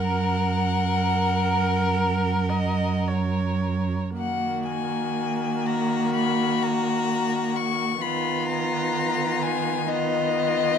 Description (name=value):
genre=classical, slow romantic movement for string quartet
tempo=51-67 BPM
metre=4/4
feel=rubato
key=F# major, Eb minor from 4.2 s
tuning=A4 = 440 Hz
part: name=warm violin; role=melody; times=0.0-10.8 s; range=Eb5 to Db6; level=-27 LUFS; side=left 8 dB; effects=none
part: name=rich violin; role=second line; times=0.0-10.8 s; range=F4 to A#4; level=-29 LUFS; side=left 3 dB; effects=none
part: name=clear viola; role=accompaniment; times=0.0-10.8 s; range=Bb3 to D#5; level=-28 LUFS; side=right 2 dB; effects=none
part: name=rich cello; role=bass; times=0.0-10.8 s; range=F#2 to Eb3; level=-27 LUFS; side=right 4 dB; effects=none
room=moderate studio reverb, RT60 0.6 s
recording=dark, warm production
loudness=-22 LUFS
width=side -7 dB against mid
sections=0.0-4.2 A section; 4.2-10.8 B section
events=none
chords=0.0 F#; 4.2 Ebm; 8.0 Db13/Eb (rootless)